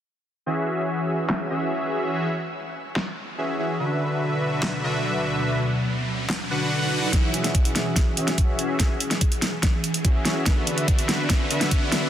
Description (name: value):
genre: future bass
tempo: 144 BPM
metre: 4/4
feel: half-time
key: E major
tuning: A4 = 441 Hz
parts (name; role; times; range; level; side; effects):
- soft supersaw; riff; 0.5-12.1 s; D3 to F#5; -25 LUFS; equal; sidechain pumping, low-pass filter, digital delay
- pop drum kit; drums; 1.3-12.0 s; handclaps, hi-hat, snare drum; -28 LUFS; equal; overdrive, low-pass filter on snare, low-pass filter on hats, low-pass filter on room
- ethereal airy pad; sustained chords; 4.3-12.1 s; D2 to G#4; -30 LUFS; left 1 dB; ensemble chorus, built-in reverb, sidechain pumping
- riser; sound effects; 5.5-12.1 s; none; -32 LUFS; right 1 dB; none
- long sustained 808-style bass; bass; 7.1-12.1 s; none; barely audible; none; none
- electronic kick drum; drums; 7.1-11.8 s; none; -21 LUFS; equal; overdrive
room: light reverb, digital ambience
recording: dense, heavily limited modern master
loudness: -21 LUFS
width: side -10 dB against mid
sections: 0.5-7.1 A section; 7.1-12.1 B section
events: filter sweep on drum 0.5-7.1; filter sweep on supersaw synth 0.5-7.1, 7.1-12.1; riser 5.5-7.1, 7.1-12.1; build-up 7.1-12.1; drum fill 7.1-12.1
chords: 0.5 E6; 3.8 D6; 7.1 E6; 10.5 D6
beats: | 0.46 0.88 1.30 1.71 | 2.13 2.55 2.96 3.38 | 3.80 4.21 4.63 5.05 | 5.46 5.88 6.30 6.71 | 7.13 7.55 7.96 8.38 | 8.80 9.21 9.63 10.05 | 10.46 10.88 11.30 11.71